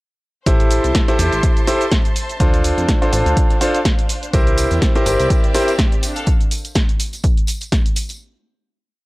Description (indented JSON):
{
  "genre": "piano house",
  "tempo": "124 BPM",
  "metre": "4/4",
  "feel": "swing 56% on 16ths",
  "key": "D minor",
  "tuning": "A4 = 442 Hz",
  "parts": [
    { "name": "clear concert grand piano", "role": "riff", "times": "0.5-5.7 s", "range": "D4 to C5", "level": "-19 LUFS", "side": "equal", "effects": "sidechain pumping, analog delay" },
    { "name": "plucky analog bass", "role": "bass", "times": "0.5-5.3 s", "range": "G1 to F2", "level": "-20 LUFS", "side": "equal", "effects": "sidechain pumping" },
    { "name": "electronic kick drum", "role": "drums", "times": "0.5-7.8 s", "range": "none", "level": "-16 LUFS", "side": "equal", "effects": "none" },
    { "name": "punchy analog drum machine", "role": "drums", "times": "0.5-8.2 s", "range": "cabasa, hi-hat, snare drum", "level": "-23 LUFS", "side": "equal", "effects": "none" },
    { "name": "rich studio string section", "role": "texture", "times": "0.5-6.3 s", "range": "C4 to C6", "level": "-27 LUFS", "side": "left 1 dB", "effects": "sidechain pumping" },
    { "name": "tambourine", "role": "percussion", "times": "4.3-8.2 s", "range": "none", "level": "-31 LUFS", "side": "equal", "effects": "none" }
  ],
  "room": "small room ambience",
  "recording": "dry, gritty hardware recording",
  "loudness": "-14 LUFS",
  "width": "side -21 dB against mid",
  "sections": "0.5-8.2 drop",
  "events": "drop 0.5-8.2",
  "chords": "0.5 Am7; 2.4 Dm7; 4.3 C7; 6.0 Dm7",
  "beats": "| 0.46 0.95 1.43 1.92 | 2.40 2.88 3.37 3.85 | 4.33 4.82 5.30 5.79 | 6.27 6.75 7.24 7.72"
}